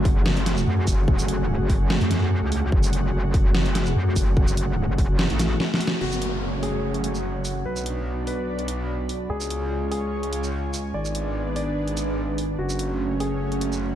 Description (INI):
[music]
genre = heavy wobble dubstep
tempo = 146 BPM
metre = 4/4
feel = swing 54% on 16ths, half-time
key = F# minor, F# harmonic minor from 6.0 s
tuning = A4 = 440 Hz
[part]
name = supersaw pad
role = sustained chords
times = 0.0-14.0 s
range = G#3 to F#5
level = -32 LUFS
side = right 2 dB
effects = sidechain pumping, low-pass filter
[part]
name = metallic wobble bass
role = bass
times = 0.0-14.0 s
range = F#1 to F#2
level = -25 LUFS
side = equal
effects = distortion, chorus, overdrive
[part]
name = airy breathy pad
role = texture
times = 0.0-14.0 s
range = A3 to C#6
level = -31 LUFS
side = equal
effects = chorus, sidechain pumping
[part]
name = dubstep drum kit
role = drums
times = 0.1-13.8 s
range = crash cymbal, hi-hat, shaker, snare drum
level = -27 LUFS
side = equal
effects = overdrive
[part]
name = electronic kick drum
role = drums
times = 0.1-5.1 s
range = none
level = -21 LUFS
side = equal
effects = none
[part]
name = dark concert grand piano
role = melody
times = 6.0-13.7 s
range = F#4 to D5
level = -32 LUFS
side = left 2 dB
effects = ping-pong delay
[part]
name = downlifter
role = sound effects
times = 6.0-9.3 s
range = none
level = -33 LUFS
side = right 1 dB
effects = none
[sound]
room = light reverb, digital ambience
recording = dark, warm production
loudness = -21 LUFS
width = side -11 dB against mid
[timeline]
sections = 0.0-6.0 A section; 6.0-14.0 B section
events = drop 0.0-6.0; drum fill 5.6-6.0; band accent 5.9; filter sweep on supersaw synth 6.0-14.0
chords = 0.0 F#madd9; 6.0 F#m; 7.7 Bm; 9.3 C#; 10.9 G#dim; 12.6 F#m